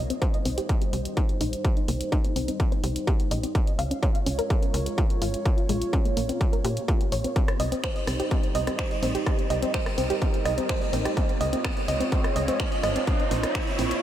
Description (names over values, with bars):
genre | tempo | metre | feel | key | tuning
melodic techno | 126 BPM | 4/4 | straight | C phrygian | A4 = 439 Hz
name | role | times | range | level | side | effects
dark analog pad | sustained chords | 0.0-14.0 s | G3 to Db5 | -33 LUFS | right 1 dB | chorus, phaser, sidechain pumping
soft round pluck | arpeggios | 0.0-13.8 s | Ab3 to F5 | -29 LUFS | equal | chorus, sidechain pumping, diffuse ambient delay
tight sequencer bass | bass | 0.0-13.9 s | Ab1 to Bb2 | -29 LUFS | equal | tube saturation, sidechain pumping
punchy analog drum machine | drums | 0.1-14.0 s | finger snaps, hi-hat, rim click | -34 LUFS | equal | none
electronic kick drum | drums | 0.2-13.6 s | none | -25 LUFS | equal | distortion, overdrive
riser | sound effects | 9.4-14.0 s | none | -36 LUFS | right 1 dB | none
room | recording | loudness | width
moderate huge ambient reverb, RT60 6.0 s | dreamy mix soaked in reverb | -23 LUFS | side -11 dB against mid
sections
0.0-14.0 A section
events
build-up 0.0-14.0; filter sweep on synth arpeggio sound 0.0-14.0; riser 9.4-14.0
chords
0.0 Cm; 3.6 Db; 5.5 Bbm; 7.4 Cm; 11.2 Db; 13.1 Bbm